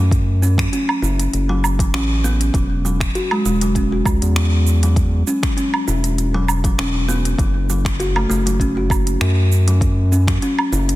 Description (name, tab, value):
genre	organic downtempo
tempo	99 BPM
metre	4/4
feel	swing 54% on 16ths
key	F# minor pentatonic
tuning	A4 = 441 Hz
part	kalimba	arpeggios	0.0-11.0 s	F#3 to F#4	-21 LUFS	equal	tape echo
part	round analog bass	bass	0.0-11.0 s	E1 to F#2	-17 LUFS	equal	tube saturation, sidechain pumping
part	afro-pop drum kit	drums	0.1-11.0 s	finger snaps, hi-hat, shaker, woodblock	-24 LUFS	right 2 dB	studio reverb, soft clipping on snare
part	electronic kick drum	drums	0.1-10.4 s	none	-20 LUFS	equal	studio reverb
room	light reverb, digital ambience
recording	dense, heavily limited modern master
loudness	-15 LUFS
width	side -16 dB against mid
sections	0.0-11.0 A section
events	none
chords	0.0 F#m7; 2.5 N.C.; 7.4 F#5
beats	| 0.12 0.72 1.33 1.94 | 2.54 3.15 3.75 4.36 | 4.97 5.57 6.18 6.78 | 7.39 8.00 8.60 9.21 | 9.81 10.42